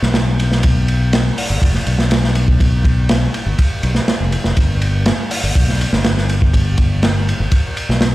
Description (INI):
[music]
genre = breakbeat, breaks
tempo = 122 BPM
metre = 4/4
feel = straight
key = unclear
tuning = A4 = 440 Hz
[part]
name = fingered electric bass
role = bass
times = 0.0-8.1 s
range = F1 to B1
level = -16 LUFS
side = equal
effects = none
[part]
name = crunchy breakbeat drum kit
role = drums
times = 0.0-8.1 s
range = hi-hat, kick drum, ride cymbal, snare drum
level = -16 LUFS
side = equal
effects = none
[sound]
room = little or no reverb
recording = played on a big sound system in a bare room, large studio reverb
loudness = -13 LUFS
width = side -17 dB against mid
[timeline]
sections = 0.0-8.1 A section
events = none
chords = none